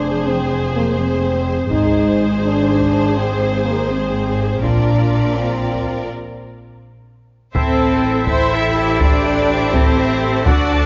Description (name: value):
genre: cinematic, epic orchestral film score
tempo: 82 BPM (dotted quarters)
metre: 6/8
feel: straight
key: A phrygian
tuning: A4 = 439 Hz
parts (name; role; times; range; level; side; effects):
- warm symphonic violin section; melody; 0.0-10.9 s; C5 to E5; -29 LUFS; equal; none
- warm symphonic violin section; second line; 0.0-10.9 s; F#4 to A5; -29 LUFS; equal; none
- warm symphonic viola section; accompaniment; 0.0-10.9 s; F4 to C5; -27 LUFS; equal; none
- mellow French horn section; sustained chords; 0.0-10.9 s; Bb3 to A4; -24 LUFS; equal; none
- rich studio double bass section; bass; 0.0-10.9 s; F1 to D2; -25 LUFS; equal; none
- rich symphonic cello section; bass; 0.0-10.9 s; F2 to E4; -23 LUFS; equal; none
- taiko ensemble; drums; 1.7-10.9 s; none; -22 LUFS; equal; none
- chamber organ, soft reed; sustained chords; 7.5-10.9 s; A3 to E5; -25 LUFS; equal; none
room: moderate scoring stage reverb, RT60 2.1 s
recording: nothing above 7.5 kHz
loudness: -17 LUFS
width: mono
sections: 0.0-7.6 A section; 7.6-10.9 B section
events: break 6.1-7.6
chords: 0.0 Fm; 1.7 G#; 4.6 Bb; 7.6 Am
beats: | 0.26 0.99 | 1.72 2.45 | 3.18 3.91 | 4.64 5.37 | 6.10 6.83 | 7.55 8.28 | 9.01 9.74 | 10.47